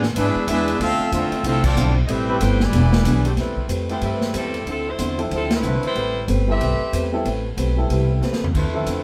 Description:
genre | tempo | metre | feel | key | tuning
jazz, big band swing | 186 BPM | 4/4 | swing 61% on 8ths | A minor | A4 = 439 Hz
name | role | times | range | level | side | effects
fingerpicked acoustic archtop guitar | accompaniment | 0.0-9.0 s | D3 to B4 | -29 LUFS | equal | none
upright bass | bass | 0.0-9.0 s | E1 to A2 | -24 LUFS | equal | none
swinging big-band drum kit | drums | 0.0-9.0 s | crash cymbal, hi-hat, kick drum, ride cymbal, snare drum, toms | -29 LUFS | equal | none
bright trombone section | sustained chords | 0.1-3.3 s | G#3 to C5 | -29 LUFS | equal | none
bright trumpet section | melody | 0.2-3.3 s | C4 to G#5 | -27 LUFS | equal | none
brilliant trombone section | second line | 0.2-3.2 s | B2 to G4 | -28 LUFS | equal | none
edgy saxophone section | melody | 3.4-9.0 s | F3 to E5 | -28 LUFS | equal | none
clear concert grand piano | accompaniment | 3.9-9.0 s | F3 to E5 | -29 LUFS | equal | none
room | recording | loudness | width
moderate studio reverb, RT60 0.8 s | band playing live in one room | -20 LUFS | mono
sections
0.0-3.4 A section; 3.4-9.0 B section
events
band accent 1.6, 5.5; drum fill 8.2-8.5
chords
0.0 E7; 0.8 Dm9; 2.1 Am9; 2.7 E7; 3.4 Am9; 4.7 Dm9; 6.0 Am9

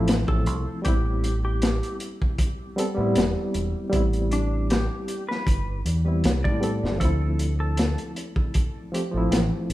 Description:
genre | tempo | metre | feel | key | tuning
trip hop | 78 BPM | 4/4 | swing 54% on 16ths | A minor | A4 = 437 Hz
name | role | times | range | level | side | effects
barky reed electric piano | accompaniment | 0.0-9.7 s | F3 to A4 | -28 LUFS | equal | overdrive, fast tremolo, tape echo
deep dub fingered electric bass | bass | 0.0-9.7 s | E1 to A2 | -24 LUFS | equal | none
crunchy breakbeat drum kit | drums | 0.1-9.7 s | hi-hat, kick drum, snare drum | -25 LUFS | equal | none
clean lap steel guitar | melody | 0.3-8.1 s | D4 to D5 | -34 LUFS | equal | tape echo
room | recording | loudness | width
little or no reverb | rough home demo mix, studio reverb | -22 LUFS | side -16 dB against mid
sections
0.0-9.7 A section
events
none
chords
0.0 Dm7 (rootless); 0.8 Am7; 7.0 Dm7

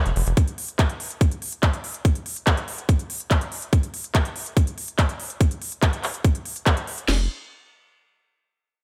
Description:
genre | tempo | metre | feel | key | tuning
psychedelic trance | 143 BPM | 4/4 | straight | unclear | A4 = 440 Hz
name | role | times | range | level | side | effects
tight sequencer bass | bass | 0.1-0.3, 7.1-7.3 s | F1 | -24 LUFS | equal | tube saturation
big-room dance drum kit | drums | 0.1-7.1 s | handclaps, hi-hat | -29 LUFS | equal | overdrive, studio reverb
garage drum kit | drums | 0.4-7.2 s | crash cymbal, kick drum, snare drum | -21 LUFS | equal | overdrive, studio reverb
room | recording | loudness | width
little or no reverb | none | -23 LUFS | mono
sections
0.0-7.1 A section; 7.1-8.8 B section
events
none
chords
none

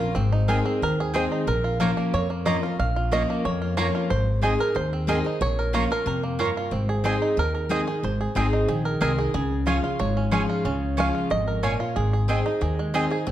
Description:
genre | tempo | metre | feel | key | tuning
bluegrass | 183 BPM | 4/4 | straight | unclear | A4 = 440 Hz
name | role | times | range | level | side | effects
bluegrass banjo | melody | 0.0-13.3 s | Ab3 to F5 | -27 LUFS | right 3 dB | none
picked steel-string acoustic guitar | accompaniment | 0.0-13.3 s | F2 to Ab4 | -26 LUFS | left 2 dB | none
upright bass | bass | 0.0-13.3 s | Ab1 to F2 | -26 LUFS | equal | none
mandolin | stabs | 0.5-13.0 s | Bb3 to Bb5 | -30 LUFS | right 3 dB | none
room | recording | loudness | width
moderate large studio reverb, RT60 1.4 s | dark, warm production | -21 LUFS | side -12 dB against mid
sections
0.0-6.7 A section; 6.7-13.3 A section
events
five-string banjo solo 0.0-13.3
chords
0.2 Ab; 1.5 Bbm; 4.1 Ab; 5.4 Bbm; 6.7 Ab; 9.3 Db; 12.0 Ab

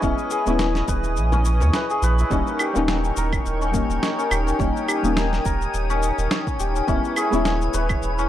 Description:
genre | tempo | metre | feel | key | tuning
organic downtempo | 105 BPM | 4/4 | swing 56% on 16ths | Eb phrygian dominant | A4 = 440 Hz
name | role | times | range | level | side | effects
deep mellow chord stab | accompaniment | 0.0-8.3 s | G3 to E4 | -26 LUFS | left 2 dB | chorus, sidechain pumping, tape echo
warm analog pad | sustained chords | 0.0-8.3 s | Eb4 to Eb6 | -28 LUFS | equal | chorus, sidechain pumping
santur | arpeggios | 0.0-8.3 s | C#4 to C#5 | -26 LUFS | left 2 dB | tape echo
warm sub bass | bass | 0.0-8.3 s | Eb1 to Eb2 | -22 LUFS | right 1 dB | transformer saturation, sidechain pumping
electronic cabasa, snare drum and claves | drums | 0.0-8.3 s | none | -27 LUFS | equal | none
electronic kick drum | drums | 0.0-8.0 s | none | -26 LUFS | right 1 dB | overdrive
drifting glass-harmonics texture | texture | 0.0-8.3 s | Db5 to Eb5 | -34 LUFS | left 1 dB | chorus, built-in reverb
frame drum | percussion | 0.9-1.7 s | none | -32 LUFS | left 4 dB | none
room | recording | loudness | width
little or no reverb | dry, gritty hardware recording | -19 LUFS | side -12 dB against mid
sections
0.0-2.3 A section; 2.3-8.3 B section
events
kick drops out 1.7-2.3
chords
0.0 E6/Eb; 2.3 Eb7

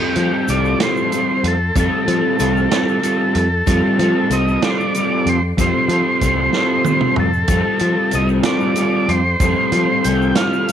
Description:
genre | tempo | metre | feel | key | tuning
psychedelic rock | 63 BPM (dotted quarters) | 6/8 | straight | F major | A4 = 440 Hz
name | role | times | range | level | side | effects
combo organ | melody | 0.0-10.7 s | G4 to G5 | -20 LUFS | equal | slapback echo
electric guitar at the edge of break-up | riff | 0.0-10.7 s | G3 to A4 | -18 LUFS | equal | rotary speaker, double-tracked left and right
overdriven picked electric bass | bass | 0.2-10.3 s | C2 to F3 | -20 LUFS | left 1 dB | none
vintage drum kit | drums | 0.2-10.7 s | hi-hat, kick drum, snare drum, toms | -22 LUFS | right 3 dB | none
egg shaker | percussion | 0.5-10.7 s | none | -36 LUFS | left 16 dB | none
room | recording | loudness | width
light reverb | 1960s-style stereo | -14 LUFS | side -9 dB against mid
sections
0.0-10.7 A section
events
drum fill 6.5-7.5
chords
0.0 Fadd9

